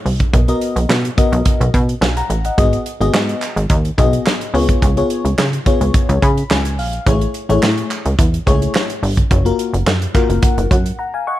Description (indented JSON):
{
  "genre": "early-eighties boogie funk",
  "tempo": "107 BPM",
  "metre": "4/4",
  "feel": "straight",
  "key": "unclear",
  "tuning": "A4 = 440 Hz",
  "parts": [
    { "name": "plucky analog bass", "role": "bass", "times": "0.1-10.9 s", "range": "F#1 to C#3", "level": "-17 LUFS", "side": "equal", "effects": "none" },
    { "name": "modern studio drum kit", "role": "drums", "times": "0.1-11.0 s", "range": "hi-hat, kick drum, snare drum", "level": "-17 LUFS", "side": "right 1 dB", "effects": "none" },
    { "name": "FM electric piano with soft pad layer", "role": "accompaniment", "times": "0.3-11.4 s", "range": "A3 to C#6", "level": "-20 LUFS", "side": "left 4 dB", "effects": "chorus" },
    { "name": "group handclap", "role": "percussion", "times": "0.9-10.3 s", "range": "none", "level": "-26 LUFS", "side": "right 3 dB", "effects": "none" }
  ],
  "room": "small room reverb",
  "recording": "none",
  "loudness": "-13 LUFS",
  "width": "side -14 dB against mid",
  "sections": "0.0-11.4 A section",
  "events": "FM electric piano fill 5.9-7.1, 9.9-11.4; break 11.0-11.4",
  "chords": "0.3 Bmaj7; 2.6 G#m7; 4.5 C#7; 7.1 Amaj7; 9.3 F#maj7",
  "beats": "| 0.34 0.90 1.46 2.02 | 2.58 3.14 3.70 4.26 | 4.82 5.38 5.94 6.50 | 7.07 7.63 8.19 8.75 | 9.31 9.87 10.43 10.99"
}